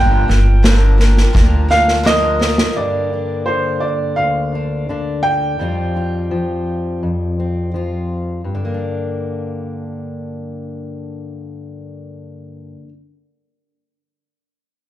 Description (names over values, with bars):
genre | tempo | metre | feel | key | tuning
indie folk with a building arrangement | 84 BPM | 4/4 | straight | G minor | A4 = 439 Hz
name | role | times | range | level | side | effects
clear upright piano | melody | 0.0-7.7 s | C5 to G5 | -19 LUFS | right 2 dB | slapback echo, digital delay
picked twelve-string acoustic guitar | accompaniment | 0.0-2.8 s | G2 to Bb4 | -22 LUFS | left 4 dB | slapback echo
upright bass | bass | 0.0-2.6 s | G1 to D2 | -13 LUFS | equal | none
unplugged drum kit | drums | 0.3-2.7 s | kick drum, snare drum | -17 LUFS | equal | slapback echo
fingerpicked steel-string acoustic guitar | accompaniment | 2.8-12.9 s | D2 to F4 | -21 LUFS | left 2 dB | slapback echo
room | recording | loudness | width
studio ambience | live gig heard through the venue's PA, club reverb | -14 LUFS | side -14 dB against mid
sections
0.0-2.8 A section; 2.8-8.4 B section; 8.4-11.3 C section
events
drum fill 2.1-2.8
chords
0.0 Gm7; 2.8 Gm; 5.6 Fsus2; 8.4 Gm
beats
0.64 1.35 2.05 | 2.76 3.47 4.18 4.88 | 5.59 6.30 7.02 7.73 | 8.44 9.15 9.86 10.57